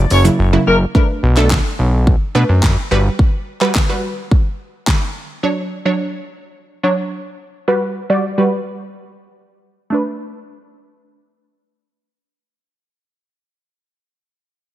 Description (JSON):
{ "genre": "dance-pop", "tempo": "107 BPM", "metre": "4/4", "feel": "straight", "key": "B minor", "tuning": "A4 = 439 Hz", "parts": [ { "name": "wide unison pluck", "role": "accompaniment", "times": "0.0-13.4 s", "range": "C#3 to D5", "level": "-18 LUFS", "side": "right 1 dB", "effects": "sidechain pumping, low-pass filter" }, { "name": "fat analog bass", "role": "bass", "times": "0.0-3.1 s", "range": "F#1 to B2", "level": "-13 LUFS", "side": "equal", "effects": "sidechain pumping" }, { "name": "warm horn section", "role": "melody", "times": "0.1-0.8 s", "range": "A#3 to C#5", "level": "-18 LUFS", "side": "left 2 dB", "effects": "ping-pong delay" }, { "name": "pop drum kit", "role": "drums", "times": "0.1-5.0 s", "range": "handclaps, hi-hat, kick drum, shaker, snare drum", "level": "-16 LUFS", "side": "equal", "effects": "none" } ], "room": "light reverb, digital ambience", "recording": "none", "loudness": "-14 LUFS", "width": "side -14 dB against mid", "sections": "0.9-9.9 A section; 9.9-12.2 B section", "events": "drums muted 0.4-0.9; filter sweep on synth pluck 0.9-9.9", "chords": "0.0 F#7; 0.9 Bm7; 2.9 Gmaj7; 5.4 Dmaj7; 7.7 Gmaj7; 9.9 Bm7" }